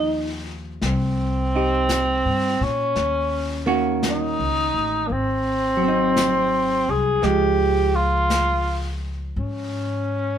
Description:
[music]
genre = jazz ballad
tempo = 56 BPM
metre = 4/4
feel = swing 67% on 8ths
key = F minor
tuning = A4 = 440 Hz
[part]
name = breathy tenor saxophone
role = melody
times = 0.0-10.4 s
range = Bb3 to Ab4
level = -21 LUFS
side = equal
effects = none
[part]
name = archtop guitar, miked and amplified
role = accompaniment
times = 0.0-10.4 s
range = Eb3 to G4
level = -25 LUFS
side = right 1 dB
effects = none
[part]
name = upright bass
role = bass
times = 0.0-10.4 s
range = Ab1 to Bb2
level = -26 LUFS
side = left 1 dB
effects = none
[part]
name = vintage brush drum kit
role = drums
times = 0.8-10.4 s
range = brushed snare drum, hi-hat, snare drum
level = -31 LUFS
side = left 3 dB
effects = none
[sound]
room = moderate studio reverb, RT60 0.8 s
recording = band playing live in one room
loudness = -19 LUFS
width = side -9 dB against mid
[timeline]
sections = 0.0-10.4 A section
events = none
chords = 0.0 Fsus2; 3.0 Ebm7; 5.1 Ab7; 7.2 Db

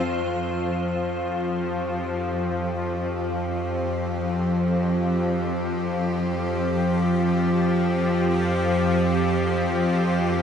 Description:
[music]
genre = dark ambient drone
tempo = free time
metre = none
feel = none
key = unclear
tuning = A4 = 441 Hz
[part]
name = clear chamber cello section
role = sustained chords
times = 0.0-10.4 s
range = F3 to G4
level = -28 LUFS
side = left 1 dB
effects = none
[part]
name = bowed-like drone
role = drone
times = 0.0-10.4 s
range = F2 to F3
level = -23 LUFS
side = equal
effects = built-in reverb
[part]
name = tubular bells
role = arpeggios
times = 0.1-10.4 s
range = C4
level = -38 LUFS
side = right 1 dB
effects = none
[sound]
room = wet huge ambient reverb, RT60 7.4 s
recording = dreamy mix soaked in reverb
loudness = -21 LUFS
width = side -7 dB against mid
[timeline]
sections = 0.1-10.4 A section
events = fade-in on cello section 0.1-10.4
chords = 0.1 F5

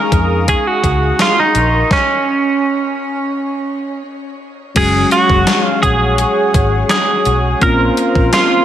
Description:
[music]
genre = 1980s-style pop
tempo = 84 BPM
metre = 4/4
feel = straight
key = unclear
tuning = A4 = 440 Hz
[part]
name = twelve-string electric guitar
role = melody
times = 0.0-8.6 s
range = Db4 to Bb4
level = -15 LUFS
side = right 3 dB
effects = digital delay, shimmer reverb
[part]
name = mellow tine electric piano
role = accompaniment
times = 0.0-8.6 s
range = Gb3 to F5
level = -20 LUFS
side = left 4 dB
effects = phaser, shimmer reverb
[part]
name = brassy analog pad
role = sustained chords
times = 0.0-8.6 s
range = Ab4 to Eb6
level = -21 LUFS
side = left 1 dB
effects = chorus, shimmer reverb
[part]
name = vintage muted fingered electric bass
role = bass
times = 0.1-8.3 s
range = Gb1 to F2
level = -17 LUFS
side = equal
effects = none
[part]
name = gated 80s digital drum machine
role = drums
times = 0.1-8.5 s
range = crash cymbal, hi-hat, kick drum, snare drum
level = -17 LUFS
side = left 1 dB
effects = gated reverb, gated reverb snare, overdrive
[part]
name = group handclap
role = percussion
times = 5.5-8.5 s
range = none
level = -29 LUFS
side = left 6 dB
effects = none
[sound]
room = moderate concert hall reverb, RT60 2.1 s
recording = none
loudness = -11 LUFS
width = side -10 dB against mid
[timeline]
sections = 0.0-4.8 A section; 4.8-8.6 B section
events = stop 1.9-4.8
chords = 0.0 Dbadd9; 1.5 Bbmadd9; 4.8 Gbsus2; 7.6 Bbmadd9

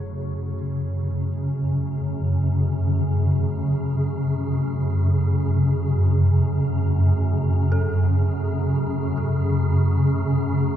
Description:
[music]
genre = dark ambient drone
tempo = free time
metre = none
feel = none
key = F# minor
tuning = A4 = 440 Hz
[part]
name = deep dark ambient pad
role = sustained chords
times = 0.0-10.8 s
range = A3 to C#5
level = -38 LUFS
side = equal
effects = chorus, built-in reverb
[part]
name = dark detuned synth bell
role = arpeggios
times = 0.0-10.8 s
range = C#4 to A4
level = -39 LUFS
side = equal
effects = chorus, ping-pong delay
[part]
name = swarming drone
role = drone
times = 0.0-10.8 s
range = F#2 to C#3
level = -20 LUFS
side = equal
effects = built-in reverb
[sound]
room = wet huge ambient reverb, RT60 8.1 s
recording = none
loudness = -20 LUFS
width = side -10 dB against mid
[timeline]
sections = 0.0-10.8 A section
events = fade-in on ambient pad 0.0-10.8; fade-in on synth bell 0.0-10.8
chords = 0.0 F#m7

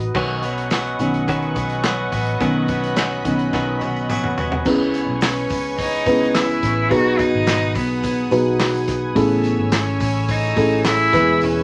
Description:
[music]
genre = piano-driven pop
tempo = 107 BPM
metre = 4/4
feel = straight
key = unclear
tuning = A4 = 440 Hz
[part]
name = felt-muted upright piano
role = accompaniment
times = 0.0-11.6 s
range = B2 to C#5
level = -23 LUFS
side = equal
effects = none
[part]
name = lush unison pad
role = sustained chords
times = 0.0-11.6 s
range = B4 to E6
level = -32 LUFS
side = equal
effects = chorus
[part]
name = vintage muted fingered electric bass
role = bass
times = 0.0-11.6 s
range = E1 to C#2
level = -29 LUFS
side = equal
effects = none
[part]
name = loose indie drum kit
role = drums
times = 0.0-11.5 s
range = crash cymbal, handclaps, hi-hat, kick drum, snare drum, toms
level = -27 LUFS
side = equal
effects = none
[part]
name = direct-recorded clean electric guitar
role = riff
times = 0.1-4.7 s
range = B2 to F#4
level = -25 LUFS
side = equal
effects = none
[part]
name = tambourine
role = percussion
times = 0.1-11.5 s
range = none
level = -46 LUFS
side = equal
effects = none
[part]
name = clear cello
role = melody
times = 4.7-11.6 s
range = B3 to F#4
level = -24 LUFS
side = equal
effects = none
[sound]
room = moderate studio reverb, RT60 0.5 s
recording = none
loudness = -19 LUFS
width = mono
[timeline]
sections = 0.1-4.7 A section; 4.7-11.6 B section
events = drum fill 3.5-4.7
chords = 0.1 Badd9; 4.7 C#m7; 6.9 G#m7; 9.2 Amaj7; 11.1 E

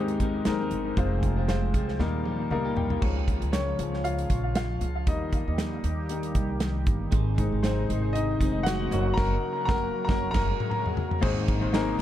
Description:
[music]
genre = piano-driven pop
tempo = 117 BPM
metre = 4/4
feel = swing 56% on 16ths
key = Ab major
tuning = A4 = 443 Hz
[part]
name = clear upright piano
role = accompaniment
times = 0.0-12.0 s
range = Ab2 to Bb5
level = -29 LUFS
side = left 3 dB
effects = dub echo
[part]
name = twelve-string electric guitar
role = riff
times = 0.0-3.0, 7.1-10.5 s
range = F2 to Bb4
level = -36 LUFS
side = right 4 dB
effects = phaser, dub echo
[part]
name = upright bass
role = bass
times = 0.0-12.0 s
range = F1 to Eb2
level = -29 LUFS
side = equal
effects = none
[part]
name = modern studio drum kit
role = drums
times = 0.1-12.0 s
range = crash cymbal, hi-hat, kick drum, ride cymbal, snare drum, toms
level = -29 LUFS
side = equal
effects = none
[part]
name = chorused pulse-width pad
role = sustained chords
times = 3.3-12.0 s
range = C3 to G4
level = -35 LUFS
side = right 1 dB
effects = none
[part]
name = swell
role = sound effects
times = 10.3-11.2 s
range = none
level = -42 LUFS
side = left 3 dB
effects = none
[sound]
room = small room reverb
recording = echo-heavy mix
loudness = -24 LUFS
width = side -12 dB against mid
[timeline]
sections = 0.0-3.0 A section; 3.0-11.2 B section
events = drum fill 2.0-3.0, 9.2-11.2; upright piano fill 2.3-3.0; upright piano solo 3.0-11.2; band accent 9.2-11.2; swell 10.3-11.2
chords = 0.0 Abadd9; 1.0 Fm; 2.0 Eb; 3.0 Db; 5.1 Eb; 7.1 Ab; 8.9 Gb; 11.2 Abadd9

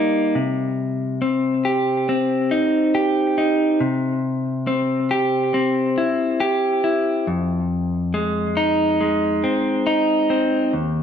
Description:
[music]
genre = rock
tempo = 69 BPM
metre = 4/4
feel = straight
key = unclear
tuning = A4 = 442 Hz
[part]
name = clean electric guitar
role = solo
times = 0.0-11.0 s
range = Eb2 to G4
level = -18 LUFS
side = equal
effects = analog delay
[sound]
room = wet large studio reverb, RT60 0.9 s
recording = none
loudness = -18 LUFS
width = side -8 dB against mid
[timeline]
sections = 0.0-10.7 A section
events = none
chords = 0.4 Cm; 3.8 C; 7.3 Fm7

